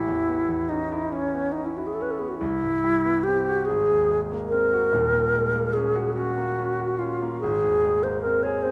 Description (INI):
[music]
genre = classical, impressionist duo for alto flute and grand piano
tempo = 48 BPM (dotted quarters)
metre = 6/8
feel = rubato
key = unclear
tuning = A4 = 440 Hz
[part]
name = alto flute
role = melody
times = 0.0-8.7 s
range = C#4 to Db5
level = -25 LUFS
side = equal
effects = none
[part]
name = warm grand piano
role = accompaniment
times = 0.0-8.7 s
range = Eb1 to Ab4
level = -32 LUFS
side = equal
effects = none
[sound]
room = wet recital hall reverb, RT60 1.6 s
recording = none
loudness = -24 LUFS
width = mono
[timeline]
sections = 0.0-8.7 A section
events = none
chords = 0.0 Aadd9; 2.4 Cmaj7#11; 3.7 Ab9; 4.9 Ebm7; 7.4 Abadd9